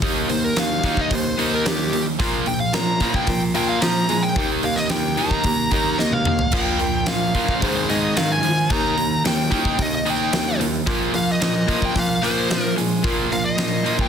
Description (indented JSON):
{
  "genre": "hard rock",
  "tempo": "111 BPM",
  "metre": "4/4",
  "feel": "straight",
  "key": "unclear",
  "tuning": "A4 = 440 Hz",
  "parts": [
    { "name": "distorted electric guitar", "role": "riff", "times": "0.0-14.1 s", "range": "Ab2 to Eb4", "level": "-24 LUFS", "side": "right 10 dB", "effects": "overdrive" },
    { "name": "overdriven semi-hollow guitar", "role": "riff", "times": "0.0-14.1 s", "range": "Ab2 to Eb4", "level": "-25 LUFS", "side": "left 12 dB", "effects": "none" },
    { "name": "bright baritone saxophone", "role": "bass", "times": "0.0-14.0 s", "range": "Eb2 to Ab3", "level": "-27 LUFS", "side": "equal", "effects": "none" },
    { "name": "huge arena drum kit", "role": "drums", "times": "0.0-14.1 s", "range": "crash cymbal, hi-hat, kick drum, snare drum, toms", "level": "-24 LUFS", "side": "equal", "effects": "none" },
    { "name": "bluesy overdriven lead guitar", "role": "melody", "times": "0.3-14.1 s", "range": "G4 to Bb5", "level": "-24 LUFS", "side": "equal", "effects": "distortion, slapback echo" }
  ],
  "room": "studio reverb",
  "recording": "dense, heavily limited modern master",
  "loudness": "-18 LUFS",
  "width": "side -8 dB against mid",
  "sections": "0.0-14.1 A section",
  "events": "drum fill 6.0-6.5",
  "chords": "0.0 Eb5; 2.2 Bb5; 4.4 Eb5; 6.5 Bb5; 7.6 Ab5; 8.7 Eb; 10.9 Bb5"
}